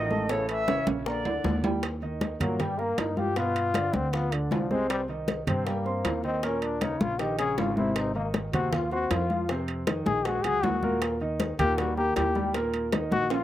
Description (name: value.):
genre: Afro-Cuban jazz.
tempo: 157 BPM.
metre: 4/4.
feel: straight.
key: Eb major.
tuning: A4 = 439 Hz.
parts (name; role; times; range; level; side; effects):
silver concert flute; melody; 0.0-1.6 s; C#5 to E5; -30 LUFS; left 1 dB; slapback echo.
clear trombone; second line; 0.0-13.4 s; C#3 to Ab4; -29 LUFS; left 4 dB; none.
warm concert grand piano; accompaniment; 0.0-13.4 s; A2 to C6; -31 LUFS; right 2 dB; none.
upright bass; bass; 0.0-13.4 s; Ab1 to G2; -33 LUFS; right 1 dB; none.
bongos; percussion; 0.1-13.4 s; none; -36 LUFS; left 7 dB; none.
congas; percussion; 0.1-13.4 s; none; -31 LUFS; left 1 dB; none.
timbales; percussion; 0.3-13.4 s; none; -35 LUFS; right 7 dB; none.
room: little or no reverb.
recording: recorded outdoors, with no room sound.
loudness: -25 LUFS.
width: side -13 dB against mid.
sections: 0.0-1.8 A section; 1.8-13.4 B section.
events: drum fill 0.7-1.8; trombone solo 1.8-13.4.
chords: 0.3 A; 1.1 A#; 1.8 Ebadd9; 3.4 G7; 4.9 Cm7; 6.4 Eb5; 8.0 Ab6; 9.5 F5; 10.3 Gb69/Bb; 11.0 Eb.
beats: | 0.30 0.68 1.06 1.45 | 1.83 2.21 2.60 2.98 | 3.37 3.75 4.13 4.52 | 4.90 5.28 5.67 6.05 | 6.43 6.82 7.20 7.58 | 7.96 8.35 8.73 9.11 | 9.49 9.88 10.26 10.64 | 11.02 11.40 11.79 12.17 | 12.55 12.93 13.31.